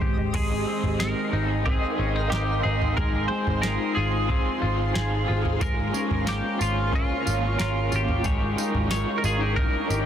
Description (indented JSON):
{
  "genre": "dream pop",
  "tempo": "91 BPM",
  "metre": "4/4",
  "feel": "straight",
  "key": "Ab major",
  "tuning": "A4 = 440 Hz",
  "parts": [
    { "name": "ethereal airy pad", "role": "sustained chords", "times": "0.0-10.1 s", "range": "Eb3 to Db6", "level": "-32 LUFS", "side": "right 1 dB", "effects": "ensemble chorus, built-in reverb, phaser" },
    { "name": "semi-hollow electric guitar", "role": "arpeggios", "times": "0.0-10.1 s", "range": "Ab3 to Db5", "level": "-30 LUFS", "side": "left 4 dB", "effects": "wide subtle chorus, tape echo" },
    { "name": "vintage muted picked electric bass", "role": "bass", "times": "0.0-10.1 s", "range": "Ab1", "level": "-27 LUFS", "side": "equal", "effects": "none" },
    { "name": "booming analog drum machine", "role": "drums", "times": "0.0-10.1 s", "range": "crash cymbal, kick drum, snare drum, tambourine, toms", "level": "-28 LUFS", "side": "right 1 dB", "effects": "none" },
    { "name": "twinkling granular texture", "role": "texture", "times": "0.0-10.1 s", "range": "Db4 to F5", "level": "-36 LUFS", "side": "right 1 dB", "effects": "built-in reverb, tape echo" },
    { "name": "raw garage guitar", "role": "accompaniment", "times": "0.3-10.1 s", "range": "Ab2 to C5", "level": "-33 LUFS", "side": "right 2 dB", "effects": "overdrive, tremolo, wide subtle chorus" },
    { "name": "twelve-string electric guitar", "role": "melody", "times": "0.4-10.1 s", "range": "F4 to C5", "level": "-30 LUFS", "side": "equal", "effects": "analog chorus, tape echo" }
  ],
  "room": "light reverb",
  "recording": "dense, heavily limited modern master",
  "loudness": "-22 LUFS",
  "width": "side -9 dB against mid",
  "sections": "0.3-10.1 A section",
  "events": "none",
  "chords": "0.3 Abmaj7; 3.0 Fm/Ab; 5.6 Bbm/Ab; 8.2 Eb7/Ab"
}